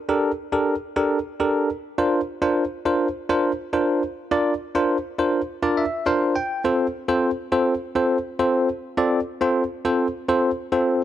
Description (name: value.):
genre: pop.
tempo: 103 BPM.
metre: 4/4.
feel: straight.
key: unclear.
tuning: A4 = 440 Hz.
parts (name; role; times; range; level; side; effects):
bell-like tine electric piano; solo; 0.1-11.0 s; C4 to G5; -20 LUFS; equal; medium stereo tremolo.
room: light reverb.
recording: dry, close 1970s-style studio recording.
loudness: -20 LUFS.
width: side -12 dB against mid.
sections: 0.0-11.0 A section.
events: tine electric piano fill 5.5-6.6.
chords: 0.0 Gmadd9; 2.0 Bbadd9; 6.6 F.